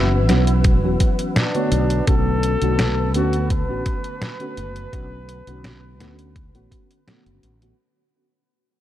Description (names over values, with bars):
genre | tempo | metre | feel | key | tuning
vaporwave | 84 BPM | 4/4 | straight | B minor | A4 = 445 Hz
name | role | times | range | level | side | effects
mellow flugelhorn | melody | 0.0-7.0 s | D4 to B4 | -28 LUFS | left 1 dB | tape echo
mellow FM electric piano | accompaniment | 0.0-7.8 s | D3 to C#5 | -24 LUFS | equal | ensemble chorus, analog delay
soft string machine | sustained chords | 0.0-7.8 s | B4 to E6 | -30 LUFS | left 1 dB | ensemble chorus
mellow fretless electric bass | bass | 0.0-7.7 s | E1 to D2 | -21 LUFS | equal | tube saturation
detuned 8-bit digital drum machine | drums | 0.3-7.8 s | hi-hat, snare drum | -24 LUFS | equal | studio reverb
electronic kick drum | drums | 0.6-6.9 s | none | -20 LUFS | equal | studio reverb
room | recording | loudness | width
light reverb | none | -17 LUFS | side -12 dB against mid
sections
0.0-7.8 A section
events
fade-out 0.0-7.8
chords
0.0 F#7sus4; 1.7 Bm9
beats
0.65 1.36 | 2.08 2.79 3.50 4.22 | 4.93 5.65 6.36 7.08